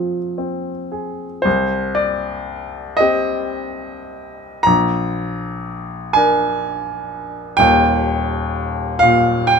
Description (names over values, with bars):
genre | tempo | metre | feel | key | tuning
classical, romantic nocturne for solo piano | 34-43 BPM (dotted quarters) | 12/8 | rubato | C minor | A4 = 443 Hz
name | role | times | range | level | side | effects
clear baby grand piano | solo | 0.0-9.6 s | Eb1 to Bb5 | -16 LUFS | equal | none
room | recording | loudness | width
light reverb | minimal, uncompressed stereo recording | -16 LUFS | side -6 dB against mid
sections
0.0-1.5 A section; 1.5-9.6 B section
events
none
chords
0.0 Fm; 1.5 Cm; 4.7 Bb; 7.6 Eb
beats
| 1.46 3.00 4.66 6.16 | 7.60 9.03